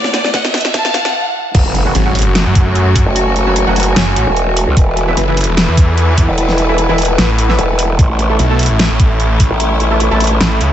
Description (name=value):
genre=heavy wobble dubstep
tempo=149 BPM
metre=4/4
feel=swing 54% on 16ths, half-time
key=F# minor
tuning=A4 = 440 Hz
part: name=clear studio violin section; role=melody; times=0.0-1.1 s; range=D5 to A5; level=-22 LUFS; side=left 1 dB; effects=dub echo
part: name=rich symphonic string section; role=sustained chords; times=0.0-10.7 s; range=E2 to B4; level=-20 LUFS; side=left 2 dB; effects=sidechain pumping
part: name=dubstep drum kit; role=drums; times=0.0-10.7 s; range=crash cymbal, hi-hat, snare drum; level=-17 LUFS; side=equal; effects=none
part: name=riser and impact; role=sound effects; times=0.0-3.2 s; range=none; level=-19 LUFS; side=equal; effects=none
part: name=warbly tape-like pad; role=texture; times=0.0-10.7 s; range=E4 to B5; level=-22 LUFS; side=right 2 dB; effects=chorus, built-in reverb, sidechain pumping
part: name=electronic kick drum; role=drums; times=0.3-9.5 s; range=none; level=-10 LUFS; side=equal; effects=none
part: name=growl bass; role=bass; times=1.5-10.4 s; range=E1 to C#2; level=-14 LUFS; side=equal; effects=chorus, overdrive
part: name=orchestra-hit-like synth stab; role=stabs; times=1.9-10.2 s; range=E3 to A4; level=-21 LUFS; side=right 1 dB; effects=built-in reverb, dub echo
part: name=snarling distorted saw bass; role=bass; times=1.9-10.7 s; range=E1 to F#2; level=-13 LUFS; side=equal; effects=overdrive
room=light reverb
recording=high-pass filter, nothing above 8.0 kHz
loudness=-10 LUFS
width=side -11 dB against mid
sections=0.0-1.5 A section; 1.5-10.7 B section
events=build-up 0.0-1.5; drum fill 0.0-1.1; riser 0.0-1.1; stop 1.1-1.5; drop 1.5-10.7; impact 1.5-3.2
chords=0.0 Esus4; 1.5 F#m; 4.8 Esus4; 8.0 A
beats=0.34 0.74 1.14 | 1.55 1.95 2.35 2.75 | 3.16 3.56 3.96 4.37 | 4.77 5.17 5.57 5.98 | 6.38 6.78 7.18 7.59 | 7.99 8.39 8.79 9.20 | 9.60 10.00 10.40